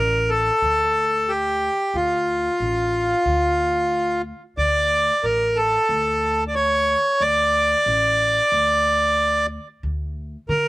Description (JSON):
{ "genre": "Arabic maqam ensemble", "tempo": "91 BPM", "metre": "4/4", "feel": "straight", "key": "D maqam nahawand", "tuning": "A4 = 442 Hz", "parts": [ { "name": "accordion", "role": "melody", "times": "0.0-10.7 s", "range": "F4 to D5", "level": "-18 LUFS", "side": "equal", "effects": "none" }, { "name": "upright bass", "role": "bass", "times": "0.0-10.7 s", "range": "A1 to D3", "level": "-28 LUFS", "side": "equal", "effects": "none" } ], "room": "little or no reverb", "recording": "recorded outdoors, with no room sound", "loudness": "-18 LUFS", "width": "side -19 dB against mid", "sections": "0.0-9.8 A section", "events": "none", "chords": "none" }